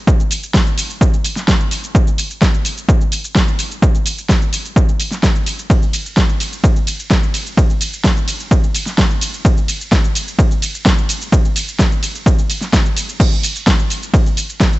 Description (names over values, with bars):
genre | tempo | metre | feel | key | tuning
EDM | 128 BPM | 4/4 | straight | none | none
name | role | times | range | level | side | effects
electronic kick drum | drums | 0.1-14.7 s | none | -13 LUFS | equal | overdrive
pop drum kit | drums | 0.1-14.8 s | crash cymbal, hi-hat, ride cymbal, shaker, snare drum | -19 LUFS | right 1 dB | none
room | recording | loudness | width
digital ambience | nothing above 8.0 kHz | -13 LUFS | side -18 dB against mid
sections
0.0-13.2 A section; 13.2-14.8 A section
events
drop 0.0-13.2, 13.2-14.8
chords
none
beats
| 0.07 0.54 1.01 1.48 | 1.95 2.42 2.89 3.35 | 3.82 4.29 4.76 5.23 | 5.70 6.17 6.64 7.11 | 7.57 8.04 8.51 8.98 | 9.45 9.92 10.39 10.86 | 11.32 11.79 12.26 12.73 | 13.20 13.67 14.14 14.61